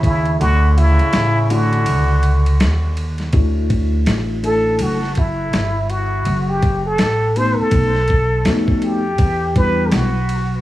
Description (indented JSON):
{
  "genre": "hip hop, jazz-hop",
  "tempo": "82 BPM",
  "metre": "4/4",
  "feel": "swing 60% on 16ths",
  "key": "D major",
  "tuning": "A4 = 442 Hz",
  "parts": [
    { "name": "trombone with metal mute", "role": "second line", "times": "0.0-2.6 s", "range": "C#3 to D3", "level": "-24 LUFS", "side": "right 4 dB", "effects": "analog delay" },
    { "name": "upright bass", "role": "bass", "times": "0.0-10.6 s", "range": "F#1 to F2", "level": "-18 LUFS", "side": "equal", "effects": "none" },
    { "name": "boom bap sampler-style drum kit", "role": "drums", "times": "0.0-10.5 s", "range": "hi-hat, kick drum, ride cymbal, snare drum", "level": "-20 LUFS", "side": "equal", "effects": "none" },
    { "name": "trumpet with plunger mute", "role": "melody", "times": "0.1-10.6 s", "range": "E4 to C5", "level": "-20 LUFS", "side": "equal", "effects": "analog delay" },
    { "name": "mellow tine electric piano", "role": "accompaniment", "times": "1.5-10.1 s", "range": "G3 to A4", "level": "-20 LUFS", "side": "left 2 dB", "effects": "medium stereo tremolo" }
  ],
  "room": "studio reverb",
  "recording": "echo-heavy mix, vinyl crackle, small room ambience, faint mains hum",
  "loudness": "-14 LUFS",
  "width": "side -15 dB against mid",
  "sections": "0.0-3.3 A section; 3.3-10.6 B section",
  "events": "kick muted 0.4-3.3; muted trumpet solo 3.3-10.6",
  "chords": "0.0 Dmaj9; 6.3 F#m; 7.7 B7; 9.2 Em9"
}